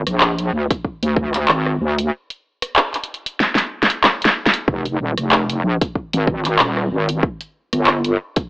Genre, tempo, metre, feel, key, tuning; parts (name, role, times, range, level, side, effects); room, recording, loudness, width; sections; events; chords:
glitch hop; 94 BPM; 4/4; swing 56% on 16ths; F dorian; A4 = 441 Hz
wobble bass; bass; 0.0-8.2 s; Eb1 to D2; -18 LUFS; equal; chorus, tube saturation
pop drum kit; drums; 0.1-8.5 s; handclaps, hi-hat, rim click, snare drum; -16 LUFS; equal
electronic kick drum; drums; 0.7-8.5 s; -19 LUFS; equal
light reverb; AM radio sound; -16 LUFS; side -23 dB against mid
0.0-8.5 A section
drum fill 3.4-4.7